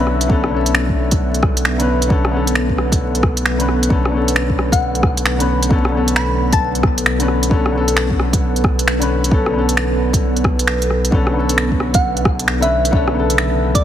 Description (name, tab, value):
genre	future garage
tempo	133 BPM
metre	4/4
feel	swing 63% on 16ths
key	B minor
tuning	A4 = 440 Hz
part	clear upright piano	accompaniment	0.0-13.8 s	C#3 to B4	-21 LUFS	left 3 dB	sidechain pumping, ping-pong delay
part	deep dark ambient pad	sustained chords	0.0-13.8 s	B3 to E5	-22 LUFS	right 1 dB	chorus, built-in reverb, sidechain pumping
part	soft dub sub bass	bass	0.0-13.8 s	B1	-20 LUFS	equal	sidechain pumping
part	organic electronic drum kit	drums	0.1-13.8 s	finger snaps, hi-hat, rim click	-20 LUFS	right 1 dB	none
part	electronic kick drum	drums	0.3-13.8 s	none	-18 LUFS	equal	none
part	thumb-piano-like synth pluck	melody	4.7-7.1, 11.9-13.8 s	D5 to B5	-22 LUFS	left 1 dB	chorus, phaser, cassette tape, ping-pong delay
room	light reverb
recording	heavily compressed radio sound, multiband compression, vinyl crackle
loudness	-14 LUFS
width	side -10 dB against mid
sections	0.0-13.8 A section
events	kick drops out 3.5-3.9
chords	0.0 Bm9